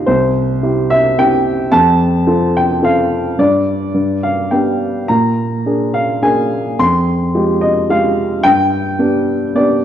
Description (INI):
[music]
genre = classical, lyrical solo piano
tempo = 108 BPM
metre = 3/4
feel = rubato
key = unclear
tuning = A4 = 435 Hz
[part]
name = dark upright piano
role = solo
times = 0.0-9.8 s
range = C2 to C6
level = -12 LUFS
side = equal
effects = none
[sound]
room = moderate concert hall reverb, RT60 2.2 s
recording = dark, warm production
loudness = -12 LUFS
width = side -10 dB against mid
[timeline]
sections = 0.0-9.8 A section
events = none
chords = 0.1 C; 1.7 F; 3.4 N.C.; 3.9 G; 5.1 Bb7; 6.8 Fmadd9; 8.4 G